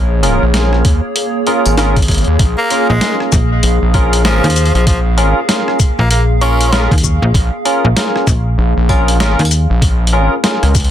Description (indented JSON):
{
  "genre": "glitch hop",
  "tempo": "97 BPM",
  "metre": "4/4",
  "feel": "swing 61% on 16ths",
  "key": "Bb minor",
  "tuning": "A4 = 440 Hz",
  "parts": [
    { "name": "warbly tape-like pad", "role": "sustained chords", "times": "0.0-10.9 s", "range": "Bb3 to F5", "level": "-20 LUFS", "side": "equal", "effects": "chorus, built-in reverb, sidechain pumping" },
    { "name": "gritty driven synth bass", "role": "bass", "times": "0.0-10.9 s", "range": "Ab1 to Eb2", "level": "-13 LUFS", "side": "equal", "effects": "tube saturation" },
    { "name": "barky tine electric piano", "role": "stabs", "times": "0.2-10.7 s", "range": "Db4 to Bb4", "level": "-18 LUFS", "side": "equal", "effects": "overdrive, analog chorus, sidechain pumping, dub echo" },
    { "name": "boom bap sampler-style drum kit", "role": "drums", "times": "0.2-10.9 s", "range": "hi-hat, rim click, shaker, snare drum", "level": "-18 LUFS", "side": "equal", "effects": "overdrive" },
    { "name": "electronic kick drum", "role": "drums", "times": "0.8-10.9 s", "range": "none", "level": "-13 LUFS", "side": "equal", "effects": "overdrive" },
    { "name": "raspy tenor saxophone", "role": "melody", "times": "2.6-6.9 s", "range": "F3 to Db4", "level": "-20 LUFS", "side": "equal", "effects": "dub echo" },
    { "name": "slap-like FM bass", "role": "bass", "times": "2.9-9.7 s", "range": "Bb1 to Eb2", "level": "-12 LUFS", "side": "equal", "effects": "none" }
  ],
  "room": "light reverb",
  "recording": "dense, heavily limited modern master",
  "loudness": "-10 LUFS",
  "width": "side -11 dB against mid",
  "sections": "0.0-10.9 A section",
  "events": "none",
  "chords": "0.0 Bbm7",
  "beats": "0.54 1.16 1.78 | 2.40 3.02 3.63 4.25 | 4.87 5.49 6.11 6.73 | 7.34 7.96 8.58 9.20 | 9.82 10.44"
}